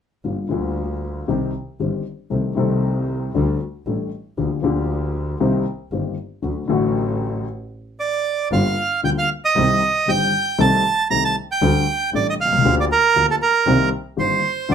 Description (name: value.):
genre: tango.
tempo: 116 BPM.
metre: 4/4.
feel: rubato.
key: G minor.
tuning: A4 = 440 Hz.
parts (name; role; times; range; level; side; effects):
dark grand piano; accompaniment; 0.2-14.7 s; G1 to A4; -21 LUFS; left 4 dB; none.
clear double bass; bass; 0.2-14.7 s; G1 to D2; -24 LUFS; right 1 dB; none.
bandoneon; melody; 8.0-14.7 s; A4 to Bb5; -18 LUFS; right 5 dB; none.
room: moderate studio reverb, RT60 0.5 s.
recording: band playing live in one room.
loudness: -18 LUFS.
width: side -8 dB against mid.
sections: 0.2-8.5 A section; 8.5-14.7 B section.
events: stop 7.5-8.5.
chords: 0.2 Gm7; 1.3 Cm; 2.3 Adim/C; 3.4 Dsus4; 4.4 Gm7/D; 5.4 Cm7; 6.4 D; 8.5 Gm7; 9.6 Cm; 10.6 Adim/C; 11.6 Dsus4; 12.6 Gm7/D; 13.7 Cm7.